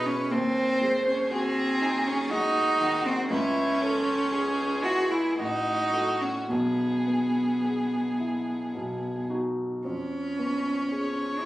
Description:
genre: classical, slow romantic movement for piano trio.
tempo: 52-60 BPM.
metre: 3/4.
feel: rubato.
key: E major.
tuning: A4 = 441 Hz.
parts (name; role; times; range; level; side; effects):
rich violin; melody; 0.0-11.5 s; E4 to C#5; -31 LUFS; left 1 dB; none.
warm cello; second line; 0.0-11.5 s; B3 to F#4; -26 LUFS; right 1 dB; none.
dark grand piano; accompaniment; 0.0-11.5 s; A1 to A4; -31 LUFS; equal; none.
room: light reverb.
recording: recorded on a phone in the room, club reverb, nothing above 10.6 kHz.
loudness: -24 LUFS.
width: side -16 dB against mid.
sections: 0.0-11.5 A section.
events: none.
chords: 0.3 G#7/D#; 3.3 C#m; 5.4 F#m/A; 6.5 E/B; 8.7 B; 9.8 C#7/E#.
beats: | 0.31 1.31 2.31 | 3.30 4.32 5.39 | 6.50 7.63 8.74 | 9.84 10.91.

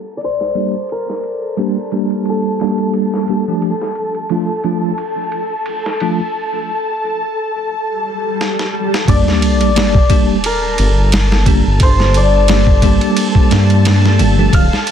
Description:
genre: trip hop.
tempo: 88 BPM.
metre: 4/4.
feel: swing 55% on 16ths.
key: G minor.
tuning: A4 = 438 Hz.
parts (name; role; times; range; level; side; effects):
santur; melody; 0.0-14.9 s; A4 to F5; -21 LUFS; left 3 dB; tape echo.
string machine, cellos; sustained chords; 0.0-14.9 s; A5; -22 LUFS; left 1 dB; ensemble chorus.
boom bap sampler-style drum kit; drums; 0.2-14.9 s; kick drum, ride cymbal, snare drum; -16 LUFS; equal; high-pass filter on kick, high-pass filter on cymbals, high-pass filter on snare, high-pass filter on room.
bell-like tine electric piano; accompaniment; 0.5-14.6 s; F3 to G4; -17 LUFS; right 1 dB; fast stereo tremolo, harmonic tremolo, low-pass filter, tape echo.
swell and sub drop; sound effects; 7.9-11.8 s; none; -20 LUFS; equal; none.
dark detuned saw bass; bass; 9.1-14.7 s; D1 to G2; -12 LUFS; equal; none.
room: light reverb.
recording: dense, heavily limited modern master, low-pass filter.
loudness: -12 LUFS.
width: side -9 dB against mid.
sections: 0.0-9.1 A section; 9.1-14.9 B section.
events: filter sweep on tine electric piano 0.0-9.1; filter sweep on string machine 0.0-9.1; filter sweep 0.0-9.1; swell 7.9-9.1; drum fill 8.4-9.1; impact 9.1-11.8.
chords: 0.0 Gm; 3.6 Dm; 9.1 Gm.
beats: 0.21 | 0.89 1.58 2.26 2.94 | 3.62 4.30 4.99 5.67 | 6.35 7.03 7.71 8.39 | 9.08 9.76 10.44 11.12 | 11.80 12.48 13.17 13.85 | 14.53.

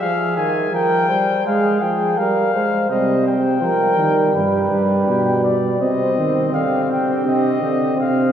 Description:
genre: classical, imitative canzona for brass ensemble.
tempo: 83 BPM.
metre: 4/4.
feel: straight.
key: F minor.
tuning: A4 = 440 Hz.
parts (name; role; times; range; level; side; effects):
mellow trumpet; melody; 0.0-8.3 s; D5 to Ab5; -21 LUFS; left 4 dB; none.
mellow flugelhorn; second line; 0.0-8.3 s; G4 to C5; -22 LUFS; right 2 dB; none.
clear trombone; accompaniment; 0.0-8.3 s; Eb3 to C4; -21 LUFS; right 1 dB; none.
dark bass trombone; bass; 2.9-8.3 s; G2 to F3; -20 LUFS; right 2 dB; none.
room: wet cathedral reverb, RT60 4.6 s.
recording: none.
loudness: -15 LUFS.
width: side -9 dB against mid.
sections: 0.0-8.3 A section.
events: none.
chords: 0.0 Fm; 2.9 Cm; 4.3 G; 5.8 Cm.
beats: | 0.01 0.73 1.45 2.17 | 2.90 3.62 4.34 5.07 | 5.80 6.53 7.26 7.99.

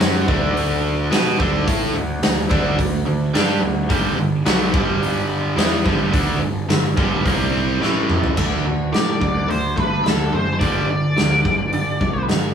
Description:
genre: classic rock.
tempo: 108 BPM.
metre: 4/4.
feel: straight.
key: D mixolydian.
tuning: A4 = 441 Hz.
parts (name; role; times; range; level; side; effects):
biting overdriven guitar; riff; 0.0-12.5 s; G2 to B4; -21 LUFS; right 1 dB; none.
fuzz picked electric bass; bass; 0.0-12.5 s; F#1 to B2; -23 LUFS; equal; overdrive.
huge arena drum kit; drums; 0.0-12.4 s; crash cymbal, hi-hat, kick drum, snare drum, toms; -21 LUFS; equal; none.
octave-fuzz lead guitar; melody; 8.9-12.2 s; A4 to D5; -22 LUFS; left 2 dB; wah, distortion.
room: light reverb.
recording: band playing live in one room, small room ambience.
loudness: -16 LUFS.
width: side -8 dB against mid.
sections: 0.0-8.4 A section; 8.4-12.5 B section.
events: drum fill 7.8-8.4.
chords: 0.0 D; 3.9 G5; 7.2 C5; 7.8 A5; 8.4 D5; 10.6 G5.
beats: 0.00 0.56 1.12 | 1.67 2.23 2.79 3.35 | 3.90 4.46 5.02 5.58 | 6.13 6.69 7.25 7.81 | 8.37 8.93 9.49 10.05 | 10.61 11.17 11.73 12.29.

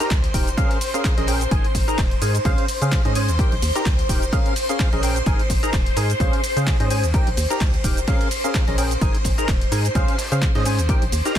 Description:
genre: piano house.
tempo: 128 BPM.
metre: 4/4.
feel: swing 56% on 16ths.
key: Ab major.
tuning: A4 = 441 Hz.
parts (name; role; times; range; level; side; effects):
string machine, violins; sustained chords; 0.0-11.4 s; C5 to C6; -27 LUFS; left 1 dB; ensemble chorus, sidechain pumping.
percussive organ stab; riff; 0.0-11.4 s; Db4 to Bb5; -25 LUFS; equal; ensemble chorus, cassette tape, sidechain pumping, dub echo.
punchy analog drum machine; drums; 0.0-11.4 s; handclaps, hi-hat, shaker; -29 LUFS; equal; overdrive, studio reverb.
street-band drum kit; drums; 0.0-11.4 s; ride cymbal, snare drum; -37 LUFS; equal; none.
organ-like FM bass; bass; 0.1-11.4 s; Eb1 to Db3; -23 LUFS; equal; sidechain pumping.
electronic kick drum; drums; 0.1-11.4 s; none; -20 LUFS; equal; studio reverb.
room: digital ambience.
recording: dense, heavily limited modern master.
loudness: -18 LUFS.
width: side -10 dB against mid.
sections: 0.0-11.4 A section.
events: none.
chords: 0.0 Eb; 0.6 Bbm7; 1.5 Absus2; 2.5 Dbmaj7; 3.4 Eb; 4.3 Bbm7; 5.3 Absus2; 6.2 Dbmaj7; 7.1 Eb; 8.1 Bbm7; 9.0 Absus2; 10.0 Dbmaj7.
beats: 0.11 0.58 1.04 | 1.51 1.98 2.45 2.92 | 3.39 3.86 4.33 4.79 | 5.26 5.73 6.20 6.67 | 7.14 7.61 8.08 8.54 | 9.01 9.48 9.95 10.42 | 10.89 11.36.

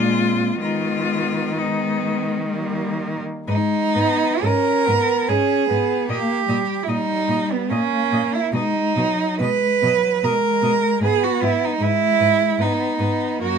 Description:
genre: classical, lyrical piece for cello ensemble.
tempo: 59-78 BPM.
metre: 3/4.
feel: rubato.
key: G# minor.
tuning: A4 = 441 Hz.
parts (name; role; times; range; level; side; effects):
rich cello; melody; 0.0-13.6 s; D#4 to D#5; -27 LUFS; left 6 dB; none.
rich cello; second line; 0.0-13.6 s; A#3 to B4; -20 LUFS; right 6 dB; none.
warm cello; accompaniment; 0.0-13.6 s; F#3 to C#4; -24 LUFS; left 4 dB; none.
rich cello; bass; 0.0-13.6 s; F#2 to D#3; -25 LUFS; right 1 dB; none.
room: light reverb.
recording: none.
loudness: -18 LUFS.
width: side -6 dB against mid.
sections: 0.0-3.5 A section; 3.5-13.6 B section.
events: none.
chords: 0.0 A#7; 0.6 G#m/D#; 2.5 D#; 3.5 G#m; 6.1 D#/A#; 8.5 G#m/B; 11.0 G#m.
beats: | 0.61 1.58 2.52 | 3.47 4.44 5.29 | 6.09 6.88 7.71 | 8.53 9.41 10.23 | 11.02 11.81 12.59 | 13.40.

